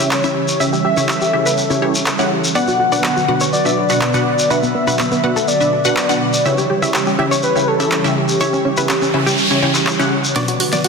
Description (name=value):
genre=progressive house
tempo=123 BPM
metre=4/4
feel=straight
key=unclear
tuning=A4 = 440 Hz
part: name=warm velvety synth lead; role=melody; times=0.0-9.9 s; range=G4 to F#5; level=-20 LUFS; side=left 1 dB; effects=chorus, ping-pong delay
part: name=airy breathy pad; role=sustained chords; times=0.0-10.9 s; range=D3 to C#5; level=-22 LUFS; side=right 2 dB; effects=chorus, phaser
part: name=analog pluck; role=arpeggios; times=0.0-10.9 s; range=B3 to E5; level=-22 LUFS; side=equal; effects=chorus, digital delay
part: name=wide unison pluck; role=stabs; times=0.0-10.9 s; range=B2 to F#5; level=-19 LUFS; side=equal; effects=phaser, digital delay
part: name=shekere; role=percussion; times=0.0-10.9 s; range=none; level=-24 LUFS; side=left 2 dB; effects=none
part: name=deep house drum kit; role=drums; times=0.1-10.9 s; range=handclaps, hi-hat, snare drum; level=-23 LUFS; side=right 1 dB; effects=overdrive
part: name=noise sweep and riser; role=sound effects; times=9.0-10.9 s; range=none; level=-21 LUFS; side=right 1 dB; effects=none
part: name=woodblock and congas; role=percussion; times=10.4-10.8 s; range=none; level=-28 LUFS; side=left 2 dB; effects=none
room=moderate lush hall reverb, RT60 2.0 s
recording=dense, heavily limited modern master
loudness=-13 LUFS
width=side -4 dB against mid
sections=0.0-10.4 A section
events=noise sweep 9.0-10.4; drum fill 10.4-10.9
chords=0.0 C#dim; 2.6 Bm; 6.5 C#dim; 10.4 Bm